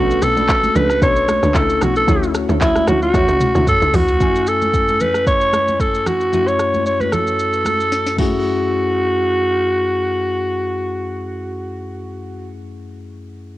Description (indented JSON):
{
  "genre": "amapiano",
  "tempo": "113 BPM",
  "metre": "4/4",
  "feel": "swing 55% on 16ths",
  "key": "F# minor",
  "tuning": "A4 = 440 Hz",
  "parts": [
    { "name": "growling alto saxophone", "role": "melody", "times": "0.0-12.5 s", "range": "E4 to C#5", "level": "-17 LUFS", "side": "equal", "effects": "tape echo" },
    { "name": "bell-like tine electric piano", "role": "accompaniment", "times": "0.0-13.6 s", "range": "F#2 to G#5", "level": "-24 LUFS", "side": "left 4 dB", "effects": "auto-pan, cassette tape" },
    { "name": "glassy wavetable pluck", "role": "stabs", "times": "0.0-3.7 s", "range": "D4 to C#5", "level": "-26 LUFS", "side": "right 2 dB", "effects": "chorus, cassette tape, tape echo" },
    { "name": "tight log drum bass", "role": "bass", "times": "0.0-4.2 s", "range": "B1 to E2", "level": "-20 LUFS", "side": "equal", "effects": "none" },
    { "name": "afro-pop drum kit", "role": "drums", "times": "0.1-8.3 s", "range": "crash cymbal, handclaps, hi-hat, kick drum, rim click, shaker, snare drum, toms", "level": "-20 LUFS", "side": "equal", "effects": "cassette tape" },
    { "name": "congas", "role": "percussion", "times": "0.4-8.7 s", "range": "none", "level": "-25 LUFS", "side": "right 3 dB", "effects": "none" }
  ],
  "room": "light reverb, digital ambience",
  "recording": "home recording on cassette",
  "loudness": "-14 LUFS",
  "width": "side -16 dB against mid",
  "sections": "0.0-4.2 A section; 4.2-8.5 B section; 8.5-12.7 C section",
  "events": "drop 0.0-4.2; drum fill 3.1-4.2, 7.9-8.5",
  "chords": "0.0 Bm7; 2.1 Dmaj9; 4.2 F#m9",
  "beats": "0.49 1.02 1.55 | 2.08 2.61 3.14 3.67 | 4.20 4.74 5.27 5.80 | 6.33 6.86 7.39 7.92 | 8.45 8.98 9.51 10.04 | 10.58 11.11 11.64 12.17"
}